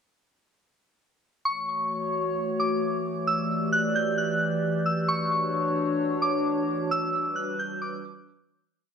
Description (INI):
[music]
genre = hip hop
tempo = 132 BPM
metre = 4/4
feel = half-time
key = G lydian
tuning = A4 = 440 Hz
[part]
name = soft synth bell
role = melody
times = 1.5-8.2 s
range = C#6 to G6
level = -28 LUFS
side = equal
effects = chorus, analog delay
[part]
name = warbly tape-like pad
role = sustained chords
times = 1.7-8.7 s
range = E3 to D5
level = -27 LUFS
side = equal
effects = chorus, built-in reverb
[sound]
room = wet cathedral reverb, RT60 6.8 s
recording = dreamy mix soaked in reverb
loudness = -24 LUFS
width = side -7 dB against mid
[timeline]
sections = 1.5-8.7 verse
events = fade-out 6.9-8.7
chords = 1.5 F#m7; 3.3 A7sus4; 5.1 Dmaj9; 6.9 Gmaj7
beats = | 1.45 1.91 2.36 2.82 | 3.27 3.73 4.18 4.63 | 5.09 5.54 6.00 6.45 | 6.91 7.36 7.82 8.27